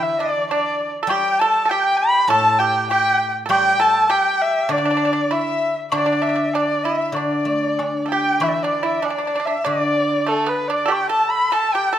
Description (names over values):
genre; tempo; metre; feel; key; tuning
chinese traditional, Chinese chamber ensemble; 98 BPM; 4/4; rubato; D zhi mode; A4 = 440 Hz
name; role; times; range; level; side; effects
dark erhu; melody; 0.0-12.0 s; A4 to B5; -20 LUFS; equal; none
bright reedy dizi; second line; 0.0-12.0 s; A4 to B5; -24 LUFS; left 6 dB; none
pipa; second line; 0.0-12.0 s; A3 to A4; -23 LUFS; right 6 dB; none
guzheng; accompaniment; 0.0-11.5 s; A2 to D4; -26 LUFS; left 1 dB; none
woodblock; percussion; 0.5-11.7 s; none; -29 LUFS; left 2 dB; none
room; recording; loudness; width
moderate recital hall reverb, RT60 1.4 s; none; -16 LUFS; side -10 dB against mid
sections
0.0-8.4 A section; 8.4-12.0 B section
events
none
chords
none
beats
0.48 | 1.09 1.69 2.29 2.90 | 3.50 4.09 4.70 5.31 | 5.92 6.53 7.15 7.79 | 8.43 9.05 9.68 10.30 | 10.92 11.54